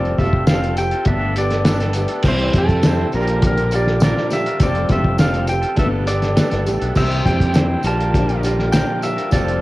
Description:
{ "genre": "folk rock and heartland rock", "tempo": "102 BPM", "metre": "4/4", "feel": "straight", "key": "unclear", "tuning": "A4 = 440 Hz", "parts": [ { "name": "pedal steel guitar", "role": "melody", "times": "0.0-9.6 s", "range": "A4 to A5", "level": "-23 LUFS", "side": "equal", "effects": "cassette tape, analog delay" }, { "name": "picked acoustic archtop guitar", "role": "accompaniment", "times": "0.0-9.6 s", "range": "G2 to G4", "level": "-23 LUFS", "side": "left 1 dB", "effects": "cassette tape" }, { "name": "bright tonewheel organ", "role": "sustained chords", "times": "0.0-9.6 s", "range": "F4 to E6", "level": "-35 LUFS", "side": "equal", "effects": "none" }, { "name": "twangy electric guitar", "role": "riff", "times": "0.0-9.6 s", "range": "Bb2 to C5", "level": "-26 LUFS", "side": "right 3 dB", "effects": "cassette tape" }, { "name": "modern bright fingered electric bass", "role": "bass", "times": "0.0-9.6 s", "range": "F1 to F2", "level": "-21 LUFS", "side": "equal", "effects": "none" }, { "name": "cloth-damped thuddy drum kit", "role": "drums", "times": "0.1-9.6 s", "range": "crash cymbal, hi-hat, kick drum, snare drum", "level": "-19 LUFS", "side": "equal", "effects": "cassette tape" }, { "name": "tambourine", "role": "percussion", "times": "0.2-9.5 s", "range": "none", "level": "-39 LUFS", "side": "right 4 dB", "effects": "none" } ], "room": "light reverb", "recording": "home recording on cassette", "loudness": "-15 LUFS", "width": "side -18 dB against mid", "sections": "0.0-9.6 A section", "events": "none", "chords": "0.0 Fadd9; 1.1 Gadd9; 2.3 C; 3.1 Bb6; 4.6 Fadd9; 5.8 Gadd9; 7.0 C; 7.8 Bb6", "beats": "0.48 1.07 1.66 | 2.25 2.84 3.43 4.02 | 4.61 5.20 5.79 6.38 | 6.96 7.55 8.14 8.73 | 9.32" }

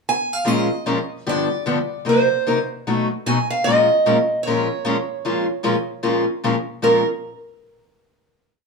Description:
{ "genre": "jazz", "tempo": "151 BPM", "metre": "4/4", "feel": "swing 62% on 8ths", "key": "Bb minor", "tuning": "A4 = 439 Hz", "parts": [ { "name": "picked steel-string acoustic guitar", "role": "melody", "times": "0.1-7.1 s", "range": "Bb4 to Ab5", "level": "-20 LUFS", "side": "right 2 dB", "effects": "plate reverb" }, { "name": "picked steel-string acoustic guitar", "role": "accompaniment", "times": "0.4-7.0 s", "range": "G2 to Bb4", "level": "-20 LUFS", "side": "left 2 dB", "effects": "none" } ], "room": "wet club reverb, RT60 0.8 s", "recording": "none", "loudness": "-17 LUFS", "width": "side -4 dB against mid", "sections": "0.0-0.5 pickup bar; 0.5-6.8 A section; 6.8-8.4 final chord", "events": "none", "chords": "0.5 Bbm7; 1.3 G7; 2.1 Cm7b5; 2.9 B7; 3.6 Bbm7", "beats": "0.07 | 0.46 0.86 1.26 1.66 | 2.06 2.45 2.85 3.25 | 3.65 4.05 4.44 4.84 | 5.24 5.63 6.03 6.43 | 6.82" }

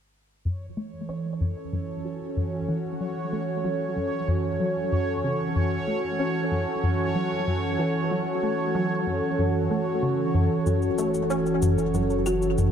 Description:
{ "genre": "ambient, sequencer-driven space music", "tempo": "94 BPM", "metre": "4/4", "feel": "straight", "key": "F# minor", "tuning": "A4 = 440 Hz", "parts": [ { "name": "sweeping resonant pad", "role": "sustained chords", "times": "0.5-12.7 s", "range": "E3 to A4", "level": "-26 LUFS", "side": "right 1 dB", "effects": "chorus" }, { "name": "plucky analog bass", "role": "riff", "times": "0.5-12.7 s", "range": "F#2 to C#4", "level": "-28 LUFS", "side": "left 1 dB", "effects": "ensemble chorus, analog delay" }, { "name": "bubbling stepped-filter texture", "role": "texture", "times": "0.7-12.7 s", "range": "C#5", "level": "-33 LUFS", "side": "right 3 dB", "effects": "chorus, built-in reverb" }, { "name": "soft round pluck", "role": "arpeggios", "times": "10.7-12.7 s", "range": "E4 to A4", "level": "-43 LUFS", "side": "moving between left 7 dB and left 1 dB", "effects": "none" }, { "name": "warm sub bass", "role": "bass", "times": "10.7-12.7 s", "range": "F#1", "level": "-33 LUFS", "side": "left 1 dB", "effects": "none" }, { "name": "shaker and claves", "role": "percussion", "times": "10.7-12.7 s", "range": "none", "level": "-40 LUFS", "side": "left 4 dB", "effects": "analog delay" } ], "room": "wet spring reverb, RT60 2.3 s", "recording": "echo-heavy mix, faint mains hum", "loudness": "-23 LUFS", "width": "side -8 dB against mid", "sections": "0.5-10.7 A section; 10.7-12.7 B section", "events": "filter sweep on analog synth bass 0.5-10.7", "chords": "0.5 F#m7", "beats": "| 0.45 1.09 1.73 2.37 | 3.00 3.64 4.28 4.92 | 5.56 6.20 6.83 7.47 | 8.11 8.75 9.39 10.03 | 10.66 11.30 11.94 12.58" }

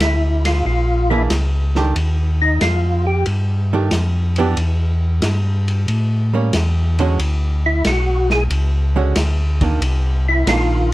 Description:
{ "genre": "soul jazz organ trio", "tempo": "92 BPM", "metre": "4/4", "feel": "swing 69% on 8ths", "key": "unclear", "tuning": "A4 = 440 Hz", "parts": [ { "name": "percussive tonewheel organ", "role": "melody", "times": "0.0-3.3, 7.7-10.9 s", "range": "Eb4 to G#4", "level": "-18 LUFS", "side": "equal", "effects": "slow rotary speaker, chorus vibrato" }, { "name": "mellow tonewheel organ", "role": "bass", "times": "0.0-10.9 s", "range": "A#1 to A2", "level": "-17 LUFS", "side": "equal", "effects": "slow rotary speaker" }, { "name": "vintage drum kit", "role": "drums", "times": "0.0-10.7 s", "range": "hi-hat, kick drum, ride cymbal, snare drum", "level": "-24 LUFS", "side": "equal", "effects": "none" }, { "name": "archtop guitar, miked and amplified", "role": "accompaniment", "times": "1.1-10.9 s", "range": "D3 to G#4", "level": "-20 LUFS", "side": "right 5 dB", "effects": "none" } ], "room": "light reverb", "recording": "close, detailed microphones", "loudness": "-15 LUFS", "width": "side -16 dB against mid", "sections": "0.0-10.9 A section", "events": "tonewheel organ solo 0.0-10.9", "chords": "0.0 E7(b5, no3); 2.0 Ebmaj9; 4.6 Em; 5.9 A7b9; 7.2 Dmaj7; 9.8 Cm9", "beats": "0.00 0.65 1.31 | 1.96 2.62 3.27 3.92 | 4.58 5.23 5.89 6.54 | 7.20 7.85 8.51 9.16 | 9.82 10.47" }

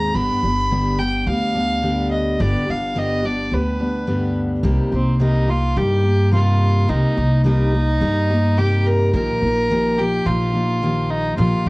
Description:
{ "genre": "folk", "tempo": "107 BPM", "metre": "4/4", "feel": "straight", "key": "C minor", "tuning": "A4 = 440 Hz", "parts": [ { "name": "warm fiddle", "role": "melody", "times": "0.0-11.7 s", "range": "C4 to B5", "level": "-22 LUFS", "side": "equal", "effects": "cassette tape" }, { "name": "picked steel-string acoustic guitar", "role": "accompaniment", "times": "0.0-11.7 s", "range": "G2 to Ab4", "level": "-22 LUFS", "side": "left 1 dB", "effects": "cassette tape" }, { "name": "upright bass", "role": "bass", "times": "0.0-11.7 s", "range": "G1 to G2", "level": "-19 LUFS", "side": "equal", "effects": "none" } ], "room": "light reverb", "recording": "home recording on cassette", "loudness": "-16 LUFS", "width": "side -24 dB against mid", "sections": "0.0-4.6 A section; 4.6-11.7 A section", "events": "none", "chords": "0.1 G; 4.6 Cm7; 9.1 Ebadd9/Bb", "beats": "| 0.14 0.71 1.27 1.83 | 2.40 2.96 3.52 4.08 | 4.64 5.20 5.77 6.33 | 6.89 7.45 8.01 8.57 | 9.13 9.70 10.26 10.82 | 11.38" }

